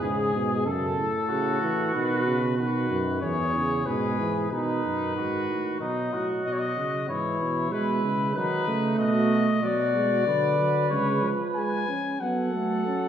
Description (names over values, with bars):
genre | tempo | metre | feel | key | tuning
classical, imitative canzona for brass ensemble | 94 BPM | 4/4 | straight | F# minor from 9.6 s | A4 = 440 Hz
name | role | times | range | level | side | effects
mellow trumpet | melody | 0.0-13.1 s | G#4 to G#5 | -28 LUFS | left 5 dB | none
warm flugelhorn | second line | 0.0-13.1 s | D#4 to B4 | -30 LUFS | right 2 dB | none
dark trombone | accompaniment | 0.0-13.1 s | B2 to C#4 | -29 LUFS | right 2 dB | none
mellow bass trombone | bass | 0.0-13.1 s | E2 to F#3 | -30 LUFS | right 1 dB | none
room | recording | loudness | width
wet recital hall reverb, RT60 1.5 s | heard from further back in the room | -23 LUFS | side -9 dB against mid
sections
0.0-4.5 A section; 4.5-13.1 B section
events
none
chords
0.0 E (rootless); 0.7 F#m; 1.9 B; 3.2 E; 4.5 B; 7.1 E/G#; 8.4 B; 9.6 Bm; 10.9 C#; 12.2 F#m